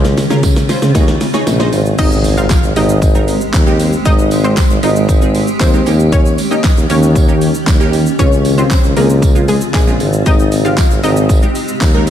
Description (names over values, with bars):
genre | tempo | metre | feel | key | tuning
dance-pop | 116 BPM | 4/4 | straight | Ab major | A4 = 440 Hz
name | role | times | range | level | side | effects
wavetable chord stab | accompaniment | 0.0-12.1 s | Ab3 to Db5 | -20 LUFS | right 2 dB | sidechain pumping
granular cloud pad | sustained chords | 0.0-12.1 s | Db3 to G4 | -19 LUFS | equal | built-in reverb, sidechain pumping
warm tuba | bass | 0.0-12.1 s | Ab1 to Db3 | -14 LUFS | equal | sidechain pumping
pop drum kit | drums | 0.0-12.1 s | crash cymbal, handclaps, hi-hat, kick drum, shaker, snare drum | -13 LUFS | equal | none
tambourine | percussion | 0.2-12.1 s | none | -31 LUFS | right 7 dB | none
analog pluck | melody | 2.0-11.5 s | Ab3 to F5 | -19 LUFS | left 3 dB | chorus, tape echo
impact | sound effects | 2.0-4.1 s | none | -22 LUFS | equal | none
room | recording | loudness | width
light reverb, digital ambience | none | -9 LUFS | side -10 dB against mid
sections
0.0-2.0 A section; 2.0-12.1 B section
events
build-up 0.0-2.0; drum fill 0.0-2.0; drop 2.0-12.1; impact 2.0-4.1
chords
0.0 Dbmaj7; 1.0 Eb7sus4; 2.0 Abmaj7; 5.9 Eb7; 8.2 Dbmaj7; 10.3 Abmaj7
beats
0.43 0.95 1.47 | 1.99 2.50 3.02 3.54 | 4.05 4.57 5.09 5.61 | 6.12 6.64 7.16 7.68 | 8.19 8.71 9.23 9.74 | 10.26 10.78 11.30 11.81